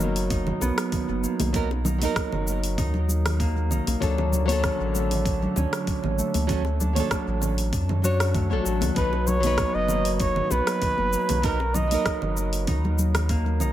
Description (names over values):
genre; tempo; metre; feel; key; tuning
sunset chillout; 97 BPM; 4/4; swing 53% on 16ths; B major; A4 = 437 Hz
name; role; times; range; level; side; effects
flamenco guitar; accompaniment; 0.0-13.7 s; D3 to C#5; -28 LUFS; moving between left 6 dB and right 7 dB; auto-pan, dub echo
concert harp; arpeggios; 0.0-13.7 s; A3 to F#4; -32 LUFS; right 2 dB; dub echo
warm sub bass; bass; 0.0-13.7 s; F#1 to F#2; -25 LUFS; equal; none
deep house drum kit; drums; 0.0-13.7 s; congas, hi-hat, rim click, shaker; -31 LUFS; right 1 dB; dub echo
electronic kick drum; drums; 0.3-13.4 s; none; -30 LUFS; equal; none
congas and bongos; percussion; 0.5-13.6 s; none; -33 LUFS; left 2 dB; dub echo
trumpet with bucket mute; melody; 9.0-12.4 s; A#4 to D#5; -26 LUFS; right 2 dB; dub echo
room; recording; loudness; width
moderate spring reverb, RT60 2.6 s; echo-heavy mix; -22 LUFS; side -12 dB against mid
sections
0.0-13.7 A section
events
none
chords
0.0 Bmaj7; 4.0 Dmaj7; 9.0 Bmaj7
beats
0.31 0.92 | 1.54 2.16 2.78 3.40 | 4.02 4.64 5.25 5.87 | 6.49 7.11 7.73 8.35 | 8.97 9.58 10.20 10.82 | 11.44 12.06 12.68 13.30